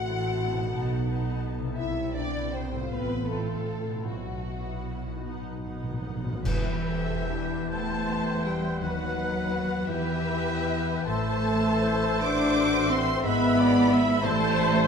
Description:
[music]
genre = classical, slow romantic movement for symphony orchestra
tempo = 46-61 BPM (dotted quarters)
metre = 6/8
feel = rubato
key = E minor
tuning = A4 = 440 Hz
[part]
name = warm studio violin section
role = melody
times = 0.0-14.9 s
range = E5 to D6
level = -34 LUFS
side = left 2 dB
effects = none
[part]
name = dark studio violin section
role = second line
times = 0.0-14.9 s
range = B3 to F#5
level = -35 LUFS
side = left 3 dB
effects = none
[part]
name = dark studio viola section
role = accompaniment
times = 0.0-14.9 s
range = B3 to E5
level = -34 LUFS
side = right 2 dB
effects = none
[part]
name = mellow French horn section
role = sustained chords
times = 0.0-14.9 s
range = E3 to F#4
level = -32 LUFS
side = left 2 dB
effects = none
[part]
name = concert harp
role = arpeggios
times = 0.0-14.9 s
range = G#2 to G5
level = -35 LUFS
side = left 7 dB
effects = none
[part]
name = warm studio cello section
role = bass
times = 0.0-14.9 s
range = A2 to D4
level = -31 LUFS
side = right 1 dB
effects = none
[part]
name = warm studio double bass section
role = bass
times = 0.0-14.9 s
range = G#1 to E2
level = -33 LUFS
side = right 4 dB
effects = none
[part]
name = timpani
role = percussion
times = 4.1-7.7 s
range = E2 to B2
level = -38 LUFS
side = equal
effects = none
[part]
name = clear clarinet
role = second line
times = 6.4-14.9 s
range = B4 to C5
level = -38 LUFS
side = left 1 dB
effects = none
[part]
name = silver concert flute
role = second line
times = 6.4-14.9 s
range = E6 to G6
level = -38 LUFS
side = right 1 dB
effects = none
[part]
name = warm bassoon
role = accompaniment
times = 6.5-14.9 s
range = G3 to B3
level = -36 LUFS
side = equal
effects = none
[part]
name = clash cymbals and concert bass drum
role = percussion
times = 6.5-8.1 s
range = none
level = -35 LUFS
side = right 1 dB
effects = none
[sound]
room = wet recital hall reverb, RT60 1.3 s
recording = none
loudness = -24 LUFS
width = side -6 dB against mid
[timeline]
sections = 0.0-6.5 A section; 6.5-14.9 B section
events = timpani fill 5.2-6.5; band accent 6.5-7.3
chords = 0.0 F#m7b5/A; 0.7 B7; 1.8 Cmaj7; 2.9 F/A; 4.1 Bsus4; 5.2 B; 6.5 Em; 8.8 B/D#; 9.9 Em; 11.1 Am; 13.2 E/G#; 14.2 Am7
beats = 0.71 | 1.77 2.89 | 4.06 5.25 | 6.45 7.71 | 8.82 9.89 | 11.08 12.23 | 13.25 14.24

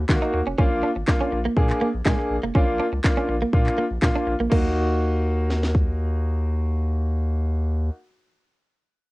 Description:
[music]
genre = dance-pop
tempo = 122 BPM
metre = 4/4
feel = straight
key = Eb minor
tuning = A4 = 440 Hz
[part]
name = round analog bass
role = bass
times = 0.0-7.9 s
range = F1 to Eb3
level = -24 LUFS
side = equal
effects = sidechain pumping
[part]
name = clear baby grand piano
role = accompaniment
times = 0.1-7.9 s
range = Bb3 to Ab4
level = -26 LUFS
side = left 1 dB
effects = sidechain pumping, cassette tape
[part]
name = house drum kit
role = drums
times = 0.1-5.9 s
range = crash cymbal, handclaps, kick drum, snare drum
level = -20 LUFS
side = equal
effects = cassette tape
[part]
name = direct-recorded clean electric guitar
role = riff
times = 0.2-4.7 s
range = Ab3 to Eb4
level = -26 LUFS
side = right 3 dB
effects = wide subtle chorus, cassette tape
[sound]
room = little or no reverb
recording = home recording on cassette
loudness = -20 LUFS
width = side -20 dB against mid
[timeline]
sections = 0.0-4.5 A section; 4.5-8.5 B section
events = none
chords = 0.0 Ebm; 0.6 Bb; 4.5 Ebm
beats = 0.09 | 0.58 1.07 1.57 2.06 | 2.55 3.04 3.53 4.03 | 4.52 5.01 5.50 5.99 | 6.49 6.98 7.47

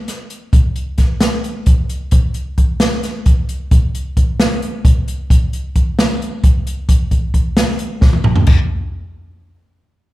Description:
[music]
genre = progressive instrumental, progressive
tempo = 264 BPM (eighths)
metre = 7/8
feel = straight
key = none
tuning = none
[part]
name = open jazz drum kit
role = drums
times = 0.1-8.6 s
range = crash cymbal, hi-hat, kick drum, snare drum, toms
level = -13 LUFS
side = equal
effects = none
[sound]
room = light reverb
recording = live gig heard through the venue's PA, club reverb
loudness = -13 LUFS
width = side -17 dB against mid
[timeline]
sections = 0.0-2.1 A section; 2.1-8.5 B section; 8.5-10.1 C section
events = drum fill 8.0-8.5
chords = none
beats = 0.08 0.30 | 0.53 0.76 0.99 1.21 1.44 1.67 1.90 | 2.12 2.35 2.58 2.81 3.03 3.26 3.49 | 3.71 3.94 4.17 4.40 4.62 4.85 5.08 | 5.30 5.53 5.76 5.99 6.21 6.44 6.67 | 6.89 7.12 7.35 7.58 7.80 8.03 8.26 | 8.48

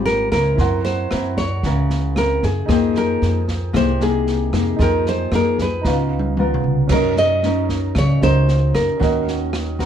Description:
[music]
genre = bossa nova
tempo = 114 BPM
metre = 4/4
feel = straight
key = unclear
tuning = A4 = 444 Hz
[part]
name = nylon-string guitar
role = melody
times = 0.0-9.8 s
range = Ab4 to Eb5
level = -21 LUFS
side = equal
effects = none
[part]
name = nylon-string guitar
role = accompaniment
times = 0.0-9.9 s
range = Ab2 to Bb4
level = -22 LUFS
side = left 4 dB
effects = none
[part]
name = warm concert grand piano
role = accompaniment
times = 0.0-9.9 s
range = Db4 to C6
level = -28 LUFS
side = right 7 dB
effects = none
[part]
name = upright bass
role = bass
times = 0.0-9.9 s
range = Ab1 to Gb2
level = -21 LUFS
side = equal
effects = none
[part]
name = open jazz drum kit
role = drums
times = 0.1-9.9 s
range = crash cymbal, kick drum, rim click, snare drum, toms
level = -24 LUFS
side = right 1 dB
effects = none
[sound]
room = light reverb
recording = dark, warm production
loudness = -16 LUFS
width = side -9 dB against mid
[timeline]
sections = 0.0-6.9 A section; 6.9-9.9 B section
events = drum fill 5.8-6.9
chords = 0.0 Dbmaj9#11; 0.6 Gb7#11; 2.7 Fm11; 5.8 Db13; 6.9 Gb6; 9.0 Ebm7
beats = 0.06 | 0.58 1.11 1.64 2.16 | 2.69 3.22 3.74 4.27 | 4.79 5.32 5.85 6.37 | 6.90 7.43 7.95 8.48 | 9.00 9.53

